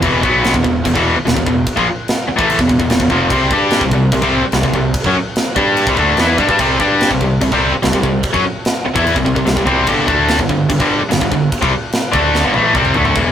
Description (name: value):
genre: heavy metal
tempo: 146 BPM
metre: 4/4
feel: straight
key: E minor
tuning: A4 = 441 Hz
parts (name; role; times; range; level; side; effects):
- distorted electric guitar; riff; 0.0-13.3 s; E2 to G4; -15 LUFS; left 4 dB; overdrive
- tight distorted guitar; riff; 0.0-13.1 s; E2 to G4; -19 LUFS; right 7 dB; distortion
- fuzz picked electric bass; bass; 0.0-13.3 s; E1 to G2; -20 LUFS; equal; overdrive
- tight metal drum kit; drums; 0.0-13.3 s; china cymbal, crash cymbal, kick drum, snare drum, toms; -19 LUFS; equal; none
room: light reverb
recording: rough rehearsal-room recording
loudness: -12 LUFS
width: side -9 dB against mid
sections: 0.0-13.2 A section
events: drum fill 12.3-13.2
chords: 0.0 E5; 3.3 C5; 9.9 G5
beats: | 0.03 0.44 0.85 1.26 | 1.67 2.08 2.49 2.90 | 3.31 3.72 4.13 4.54 | 4.95 5.36 5.77 6.18 | 6.59 7.00 7.41 7.83 | 8.23 8.64 9.06 9.47 | 9.88 10.29 10.70 11.11 | 11.52 11.93 12.34 12.75 | 13.16